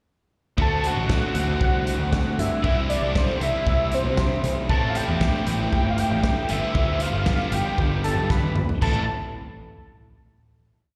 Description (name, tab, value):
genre	indie rock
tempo	117 BPM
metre	4/4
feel	straight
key	A minor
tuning	A4 = 442 Hz
part	fat analog lead	melody	0.6-9.1 s	C5 to B5	-30 LUFS	equal	chorus, phaser, slapback echo
part	biting overdriven guitar	riff	0.6-9.0 s	G2 to G4	-32 LUFS	equal	slapback echo
part	biting overdriven guitar	riff	0.6-9.0 s	G2 to A4	-32 LUFS	equal	subtle chorus, slapback echo
part	fuzz picked electric bass	bass	0.6-9.1 s	G1 to C3	-29 LUFS	equal	overdrive
part	loose indie drum kit	drums	0.6-8.9 s	crash cymbal, hi-hat, kick drum, snare drum, toms	-27 LUFS	equal	none
room	studio ambience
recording	live gig heard through the venue's PA, recital hall reverb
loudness	-23 LUFS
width	mono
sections	0.6-8.8 pre-chorus; 8.8-10.9 final chord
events	drum fill 8.3-8.8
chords	0.6 D7; 2.6 C; 4.7 Am7; 6.5 G7; 8.8 Am